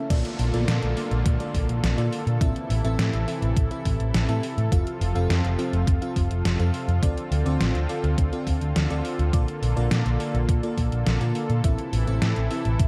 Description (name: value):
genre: synthwave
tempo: 104 BPM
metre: 4/4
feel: straight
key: unclear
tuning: A4 = 442 Hz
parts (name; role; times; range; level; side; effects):
- warm analog pad; sustained chords; 0.0-12.9 s; C3 to A4; -33 LUFS; equal; chorus, sidechain pumping, shimmer reverb
- FM electric piano with soft pad layer; stabs; 0.0-12.9 s; Bb3 to F5; -34 LUFS; equal; chorus, phaser, tape echo, shimmer reverb
- swell and downlifter; sound effects; 0.1-4.7 s; none; -41 LUFS; equal; none
- picked electric bass; bass; 0.1-12.9 s; F1 to Bb2; -26 LUFS; equal; none
- electronic kick drum; drums; 0.1-12.9 s; none; -26 LUFS; equal; overdrive
- gated 80s digital drum machine; drums; 0.1-12.9 s; crash cymbal, hi-hat, snare drum; -33 LUFS; equal; gated reverb, gated reverb snare, overdrive
room: light reverb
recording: dark, warm production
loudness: -24 LUFS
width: mono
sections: 0.1-12.9 A section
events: none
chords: 0.1 Bbmaj7; 2.4 Am; 4.7 F; 7.0 Dm7; 9.3 Bbmaj7; 11.6 Am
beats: | 0.10 0.68 1.26 1.83 | 2.41 2.99 3.56 4.14 | 4.72 5.30 5.87 6.45 | 7.03 7.60 8.18 8.76 | 9.34 9.91 10.49 11.06 | 11.64 12.22 12.80